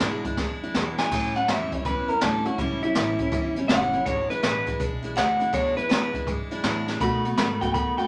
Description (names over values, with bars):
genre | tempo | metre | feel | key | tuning
rockabilly | 163 BPM | 4/4 | swing 65% on 8ths | E mixolydian | A4 = 436 Hz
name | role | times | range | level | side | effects
electric guitar through a small old amp | melody | 0.0-8.1 s | E4 to B5 | -28 LUFS | equal | none
picked steel-string acoustic guitar | accompaniment | 0.0-8.1 s | E2 to F#4 | -31 LUFS | equal | none
upright bass | bass | 0.0-8.1 s | F#1 to B2 | -36 LUFS | equal | none
jazz brush drum kit | drums | 0.0-8.0 s | crash cymbal, hi-hat, kick drum, snare drum | -30 LUFS | equal | none
room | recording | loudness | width
wet studio reverb, RT60 0.5 s | none | -25 LUFS | mono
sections
0.0-8.1 A section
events
drum fill 0.4-1.1, 6.8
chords
0.0 E7; 1.1 A7; 4.1 E7; 7.0 B7